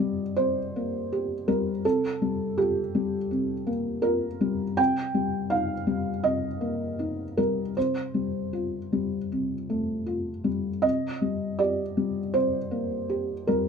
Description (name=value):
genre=neoclassical minimalist piano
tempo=80 BPM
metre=4/4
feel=rubato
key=C dorian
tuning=A4 = 441 Hz
part: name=felt-muted upright piano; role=solo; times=0.0-13.7 s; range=C3 to G5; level=-25 LUFS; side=equal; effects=none
room=light reverb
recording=none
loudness=-25 LUFS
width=side -6 dB against mid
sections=0.0-13.7 A section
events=none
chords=0.0 Cm7; 1.8 Gm7/C; 4.8 Cm7; 7.8 Fadd9/C; 10.8 Cm7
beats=0.36 1.10 | 1.84 2.58 3.31 4.03 | 4.78 5.52 6.25 7.00 | 7.76 8.53 9.31 10.07 | 10.84 11.59 12.35 13.10